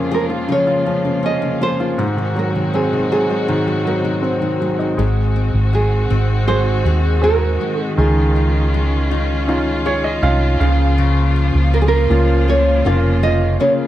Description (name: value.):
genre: pop ballad.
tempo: 80 BPM.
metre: 4/4.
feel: straight.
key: unclear.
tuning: A4 = 440 Hz.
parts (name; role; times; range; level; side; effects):
nylon-string guitar; melody; 0.0-13.7 s; Ab4 to F5; -20 LUFS; right 2 dB; none.
clear baby grand piano; accompaniment; 0.0-13.9 s; F2 to F5; -20 LUFS; equal; none.
warm chamber string section; sustained chords; 0.0-13.9 s; F2 to Gb4; -24 LUFS; right 1 dB; none.
nylon-string guitar; arpeggios; 0.0-13.9 s; Ab2 to Bb4; -24 LUFS; left 8 dB; slapback echo.
hollow-body short-scale fingered electric bass; bass; 5.0-13.6 s; F1 to Eb2; -16 LUFS; equal; none.
room: light reverb.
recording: dry, close 1970s-style studio recording.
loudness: -14 LUFS.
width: side -13 dB against mid.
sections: 0.0-5.0 A section; 5.0-13.9 B section.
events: grand piano fill 9.5-11.0.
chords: 0.0 Bbm7/F; 2.0 Ab7; 8.0 Dbadd9; 10.6 Bbm/Db.